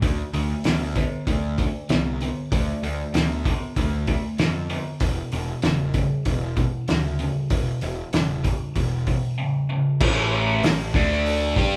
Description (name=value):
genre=classic rock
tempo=96 BPM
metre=4/4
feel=straight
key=unclear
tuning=A4 = 441 Hz
part: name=crunchy overdriven guitar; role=riff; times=0.0-11.8 s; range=E2 to G4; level=-27 LUFS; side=equal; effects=phaser
part: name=fuzz picked electric bass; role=bass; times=0.0-11.8 s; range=E1 to G2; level=-31 LUFS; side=equal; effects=overdrive
part: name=cloth-damped thuddy drum kit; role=drums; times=0.0-11.7 s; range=crash cymbal, hi-hat, kick drum, snare drum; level=-26 LUFS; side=equal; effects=none
room=moderate large studio reverb, RT60 0.8 s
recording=band playing live in one room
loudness=-24 LUFS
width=mono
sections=0.0-10.0 A section; 10.0-11.8 B section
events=none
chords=0.0 D5; 5.0 E5; 10.0 A5; 10.9 D5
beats=| 0.03 0.65 1.27 1.90 | 2.52 3.14 3.77 4.39 | 5.01 5.64 6.26 6.89 | 7.51 8.13 8.76 9.38 | 10.00 10.63 11.25